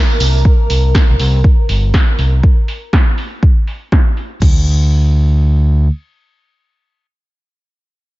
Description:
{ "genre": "deep house", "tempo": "121 BPM", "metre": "4/4", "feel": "swing 60% on 16ths", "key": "unclear", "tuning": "A4 = 440 Hz", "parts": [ { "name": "soft string machine", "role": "texture", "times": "0.0-2.4 s", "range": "Bb4", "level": "-24 LUFS", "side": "right 1 dB", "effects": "ensemble chorus" }, { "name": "warbly tape-like pad", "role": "texture", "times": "0.2-0.5 s", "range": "none", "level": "barely audible", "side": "none", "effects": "none" }, { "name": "overdriven fingered electric bass", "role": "bass", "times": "0.2-5.9 s", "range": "G1 to D2", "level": "-11 LUFS", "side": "equal", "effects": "sidechain pumping" }, { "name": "punchy analog drum machine", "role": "drums", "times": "0.2-4.5 s", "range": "crash cymbal, hi-hat, snare drum", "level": "-21 LUFS", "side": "equal", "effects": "low-pass filter on snare, low-pass filter on hats, low-pass filter on cymbals, low-pass filter on room" }, { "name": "electronic kick drum", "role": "drums", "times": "0.5-4.5 s", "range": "none", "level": "-11 LUFS", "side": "equal", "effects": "none" } ], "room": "little or no reverb", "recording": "nothing above 7.5 kHz", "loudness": "-10 LUFS", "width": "side -19 dB against mid", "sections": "0.0-4.4 A section; 4.4-8.2 B section", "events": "filter sweep on drum 0.0-4.4", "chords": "0.0 C13; 4.4 N.C." }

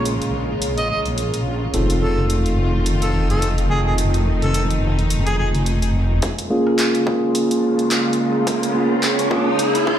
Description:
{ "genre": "glitch hop", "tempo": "107 BPM", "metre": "4/4", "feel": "swing 57% on 16ths", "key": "unclear", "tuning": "A4 = 442 Hz", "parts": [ { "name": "bright symphonic string section", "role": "sustained chords", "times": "0.0-10.0 s", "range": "Db3 to F4", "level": "-26 LUFS", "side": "equal", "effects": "sidechain pumping, low-pass filter" }, { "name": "bright tine electric piano", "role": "stabs", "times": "0.0-9.5 s", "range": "Bb3 to A4", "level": "-22 LUFS", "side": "equal", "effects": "sidechain pumping, low-pass filter, ping-pong delay" }, { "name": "wobble bass", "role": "bass", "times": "0.0-6.2 s", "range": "F1 to Bb1", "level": "-20 LUFS", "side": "equal", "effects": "chorus" }, { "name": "deep dark ambient pad", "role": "texture", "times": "0.0-10.0 s", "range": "F4 to Bb5", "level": "-27 LUFS", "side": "right 2 dB", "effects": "chorus, built-in reverb, sidechain pumping" }, { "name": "dubstep drum kit", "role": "drums", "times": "0.1-9.8 s", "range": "handclaps, hi-hat, rim click", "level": "-25 LUFS", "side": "equal", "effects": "overdrive, high-pass filter on hats, high-pass filter on snare, high-pass filter on room" }, { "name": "warm harmonica", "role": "melody", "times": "0.8-5.5 s", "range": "Ab4 to Eb5", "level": "-26 LUFS", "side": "equal", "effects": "ping-pong delay" }, { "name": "electronic kick drum", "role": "drums", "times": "6.2-10.0 s", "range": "none", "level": "-25 LUFS", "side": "equal", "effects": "overdrive, high-pass filter on kick, high-pass filter on room" }, { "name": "riser", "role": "sound effects", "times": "7.3-10.0 s", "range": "none", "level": "-24 LUFS", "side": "equal", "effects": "none" } ], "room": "light reverb", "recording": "played on a big sound system in a bare room, stone room reverb", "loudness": "-16 LUFS", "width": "side -10 dB against mid", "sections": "0.0-6.2 A section; 6.2-10.0 B section", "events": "build-up 6.2-10.0; filter sweep on tine electric piano 6.2-10.0; filter sweep on string section 6.2-10.0; riser 7.3-10.0", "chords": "0.0 Bbm7; 1.7 F7; 6.2 Bbm7" }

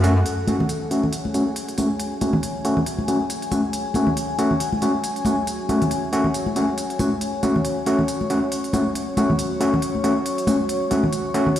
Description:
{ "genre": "deep dubstep", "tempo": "138 BPM", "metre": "4/4", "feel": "swing 57% on 16ths, half-time", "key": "F# minor", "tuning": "A4 = 440 Hz", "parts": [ { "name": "deep dark ambient pad", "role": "sustained chords", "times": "0.0-11.6 s", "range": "F#4 to C#6", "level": "-27 LUFS", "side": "left 2 dB", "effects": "chorus, built-in reverb" }, { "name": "overdriven tine electric piano", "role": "stabs", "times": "0.0-11.5 s", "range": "A3 to F#4", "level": "-22 LUFS", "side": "equal", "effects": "low-pass filter, dub echo" }, { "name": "electronic hi-hat", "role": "drums", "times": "0.0-11.6 s", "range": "none", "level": "-33 LUFS", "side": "right 1 dB", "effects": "none" }, { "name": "congas", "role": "percussion", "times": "0.5-11.5 s", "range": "none", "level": "-26 LUFS", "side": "left 1 dB", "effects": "dub echo" } ], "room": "moderate huge ambient reverb, RT60 4.5 s", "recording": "played on a big sound system in a bare room, stone room reverb, vinyl crackle", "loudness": "-19 LUFS", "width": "side -11 dB against mid", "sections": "0.3-11.6 A section", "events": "filter sweep on tine electric piano 0.3-11.6", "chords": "0.3 F#m" }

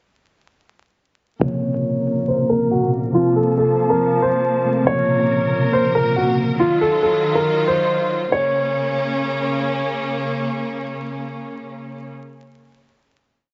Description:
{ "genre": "hip hop, drill", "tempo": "139 BPM", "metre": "4/4", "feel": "half-time", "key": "Bb harmonic minor", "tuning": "A4 = 436 Hz", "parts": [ { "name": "dark grand piano", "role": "melody", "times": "1.4-9.6 s", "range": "F4 to Db5", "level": "-21 LUFS", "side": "equal", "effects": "low-pass filter, delay" }, { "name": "soft electric-piano-like synth keys", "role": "accompaniment", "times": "1.4-6.6 s", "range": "C3 to C4", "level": "-23 LUFS", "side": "equal", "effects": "chorus, phaser, low-pass filter" }, { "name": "rich studio string section", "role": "sustained chords", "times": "1.4-12.1 s", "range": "Bb2 to A5", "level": "-26 LUFS", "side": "equal", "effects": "low-pass filter" } ], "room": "light reverb, small room ambience", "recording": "vinyl crackle, nothing above 7.7 kHz", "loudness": "-19 LUFS", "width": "mono", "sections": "1.4-8.3 breakdown; 8.3-11.8 final chord", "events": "filter sweep 1.4-8.3", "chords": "1.4 Bbmadd9; 3.1 F; 4.9 Bbmadd9; 6.6 Ebmadd9; 8.3 Bbm" }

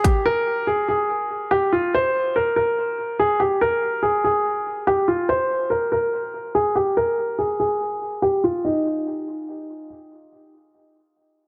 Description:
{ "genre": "hip hop", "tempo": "143 BPM", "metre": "4/4", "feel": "half-time", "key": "unclear", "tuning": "A4 = 440 Hz", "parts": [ { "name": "warm upright piano", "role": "melody", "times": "0.0-9.9 s", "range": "Eb4 to C5", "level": "-22 LUFS", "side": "equal", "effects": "low-pass filter, tape echo" } ], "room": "moderate scoring stage reverb, RT60 1.9 s", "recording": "dense, heavily limited modern master", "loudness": "-22 LUFS", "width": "mono", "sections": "0.0-8.6 A section; 8.6-11.5 B section", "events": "filter sweep on upright piano 0.0-8.6", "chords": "none" }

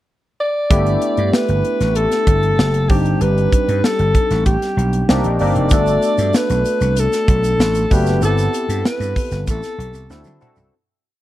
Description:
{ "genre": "polished 1980s jazz-funk pop", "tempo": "96 BPM", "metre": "4/4", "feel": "straight", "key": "G major", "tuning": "A4 = 440 Hz", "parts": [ { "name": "breathy alto saxophone", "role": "melody", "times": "0.4-10.4 s", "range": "G4 to D5", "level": "-19 LUFS", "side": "equal", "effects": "slapback echo" }, { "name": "barky tine electric piano", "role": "accompaniment", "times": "0.7-10.8 s", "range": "G3 to B4", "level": "-21 LUFS", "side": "left 2 dB", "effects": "overdrive, analog chorus" }, { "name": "vintage slap bass", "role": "bass", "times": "0.7-10.7 s", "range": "F1 to D3", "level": "-18 LUFS", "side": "equal", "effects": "none" }, { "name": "crisp fusion drum kit", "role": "drums", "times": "0.7-10.7 s", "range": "hi-hat, kick drum, snare drum, toms", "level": "-18 LUFS", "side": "equal", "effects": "none" }, { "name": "tube shaker", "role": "percussion", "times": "5.7-10.7 s", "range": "none", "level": "-37 LUFS", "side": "right 11 dB", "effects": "none" } ], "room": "little or no reverb", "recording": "dry, close 1970s-style studio recording", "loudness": "-14 LUFS", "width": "side -14 dB against mid", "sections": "0.0-0.7 pickup bar; 0.7-10.7 verse", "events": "fade-out 8.2-10.7; drum fill 10.1-10.7", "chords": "0.0 N.C.; 0.7 G6; 2.9 Cmadd9/G; 5.1 Cm7; 5.7 Bm7/G; 8.2 Am7/G; 10.1 D9" }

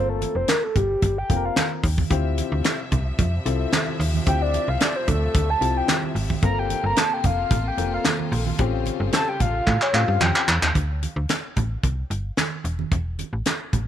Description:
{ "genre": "early-eighties boogie funk", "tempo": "111 BPM", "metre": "4/4", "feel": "straight", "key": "D minor", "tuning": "A4 = 441 Hz", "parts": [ { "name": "soft octave-layered synth lead", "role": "melody", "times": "0.0-10.5 s", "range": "G4 to Bb5", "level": "-26 LUFS", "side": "equal", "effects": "chorus, phaser" }, { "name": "dark baby grand piano", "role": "accompaniment", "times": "0.0-10.4 s", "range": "Bb3 to Bb4", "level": "-29 LUFS", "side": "left 12 dB", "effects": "none" }, { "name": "slap-like FM bass", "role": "bass", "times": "0.0-13.9 s", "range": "E1 to A2", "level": "-24 LUFS", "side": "equal", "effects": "none" }, { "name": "tight funk drum kit", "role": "drums", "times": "0.2-13.9 s", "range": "handclaps, hi-hat, kick drum, snare drum", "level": "-23 LUFS", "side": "equal", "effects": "none" }, { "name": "congas", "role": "percussion", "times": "0.2-13.9 s", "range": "none", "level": "-31 LUFS", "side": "right 10 dB", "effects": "none" }, { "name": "rich studio string section", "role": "sustained chords", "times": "2.1-10.7 s", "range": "C3 to E5", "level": "-33 LUFS", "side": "left 1 dB", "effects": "none" } ], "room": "small room ambience", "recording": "1960s-style stereo with parts hard left and right", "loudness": "-20 LUFS", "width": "side -10 dB against mid", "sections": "0.0-10.8 A section; 10.8-13.9 B section", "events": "soft synth lead solo 0.0-10.8; drum fill 9.7-10.8", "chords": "0.0 Gm11; 2.1 Dm11; 6.4 Gm11; 8.6 A7alt; 10.8 N.C.; 11.6 Am7; 12.6 Esus4" }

